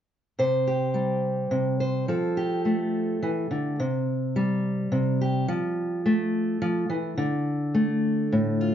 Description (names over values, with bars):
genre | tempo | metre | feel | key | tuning
folk | 106 BPM | 3/4 | straight | C major | A4 = 438 Hz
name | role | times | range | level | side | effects
fingerpicked steel-string acoustic guitar | accompaniment | 0.4-8.7 s | A2 to C5 | -23 LUFS | equal | none
room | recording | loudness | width
moderate large studio reverb, RT60 0.9 s | band playing live in one room, nothing above 7.6 kHz | -23 LUFS | side -9 dB against mid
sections
0.4-3.8 A section; 3.8-8.7 B section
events
none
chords
0.4 C5; 2.1 Fadd9; 3.8 C5; 5.5 Fadd9; 7.2 D5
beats
| 0.38 0.95 1.52 | 2.09 2.65 3.22 | 3.79 4.36 4.92 | 5.49 6.05 6.62 | 7.18 7.75 8.31